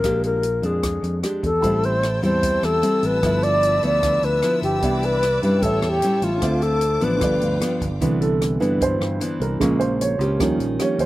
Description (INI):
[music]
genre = bossa nova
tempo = 151 BPM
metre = 4/4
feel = straight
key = C major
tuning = A4 = 440 Hz
[part]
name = mellow reedy alto flute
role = melody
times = 0.0-7.8 s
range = F4 to D5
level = -20 LUFS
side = left 1 dB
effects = slapback echo
[part]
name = nylon-string guitar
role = accompaniment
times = 0.0-11.1 s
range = F2 to G4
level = -24 LUFS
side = left 1 dB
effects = slapback echo
[part]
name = fingered electric bass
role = bass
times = 0.0-11.1 s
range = G1 to G2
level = -24 LUFS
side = equal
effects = none
[part]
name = open jazz drum kit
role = drums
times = 0.0-11.1 s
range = hi-hat, kick drum, rim click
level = -30 LUFS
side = equal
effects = none
[part]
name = warm baby grand piano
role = accompaniment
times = 1.6-11.1 s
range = Db3 to B5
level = -24 LUFS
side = right 3 dB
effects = none
[part]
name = warm chamber string section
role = sustained chords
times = 1.6-8.0 s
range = B4 to E6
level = -33 LUFS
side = left 2 dB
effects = none
[sound]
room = little or no reverb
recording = recorded outdoors, with no room sound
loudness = -18 LUFS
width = side -16 dB against mid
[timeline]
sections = 0.0-8.0 A section; 8.0-11.1 B section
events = grand piano solo 8.0-11.1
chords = 0.0 Bb6; 1.6 Am7; 3.2 G13; 4.8 Cmaj9; 5.6 A7; 6.4 Dm7; 7.2 G7; 8.0 Cmaj9; 9.6 Bbm7; 10.4 Eb7